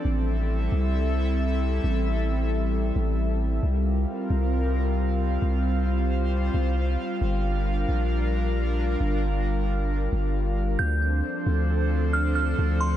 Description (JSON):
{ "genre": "hip hop, atmospheric cloud-rap", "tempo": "134 BPM", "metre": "4/4", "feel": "half-time", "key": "D minor", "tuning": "A4 = 439 Hz", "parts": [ { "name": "airy breathy pad", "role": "sustained chords", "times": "0.0-13.0 s", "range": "F3 to F5", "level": "-28 LUFS", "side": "equal", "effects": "chorus" }, { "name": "long sustained 808-style bass", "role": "bass", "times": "0.1-13.0 s", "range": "G1 to D2", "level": "-24 LUFS", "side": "equal", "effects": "none" }, { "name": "glassy synth bell", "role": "melody", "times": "10.8-13.0 s", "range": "C6 to G6", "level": "-29 LUFS", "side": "right 2 dB", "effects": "chorus, tremolo, low-pass filter, tape echo" } ], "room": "little or no reverb", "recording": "none", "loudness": "-23 LUFS", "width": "side -11 dB against mid", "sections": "0.0-10.8 A section; 10.8-13.0 B section", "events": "none", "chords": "0.1 Am7; 3.6 C7sus4; 7.2 Gm7; 10.8 Dm7" }